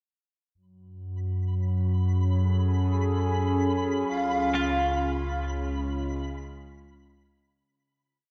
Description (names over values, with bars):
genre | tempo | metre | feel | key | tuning
ambient | free time | none | none | F# minor | A4 = 441 Hz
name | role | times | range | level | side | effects
warm sub bass | bass | 0.5-7.6 s | C#2 to F#2 | -30 LUFS | equal | none
warbly tape-like pad | sustained chords | 1.5-7.7 s | C#3 to A4 | -32 LUFS | equal | chorus, built-in reverb, shimmer reverb
twinkling granular texture | texture | 1.9-7.7 s | B5 | -42 LUFS | equal | built-in reverb, shimmer reverb
breathy flute-like synth lead | melody | 4.1-5.4 s | E#5 | -32 LUFS | equal | ensemble chorus, shimmer reverb
semi-hollow electric guitar | arpeggios | 4.5-7.6 s | E#4 | -36 LUFS | equal | spring reverb, shimmer reverb, tape echo
room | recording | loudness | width
wet lush hall reverb, RT60 2.4 s | dark, warm production, nothing above 7.6 kHz | -27 LUFS | mono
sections
0.6-7.7 A section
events
fade-in on synth texture 0.6-7.7; fade-out 4.1-7.7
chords
0.6 F#m; 4.1 C#7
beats
free time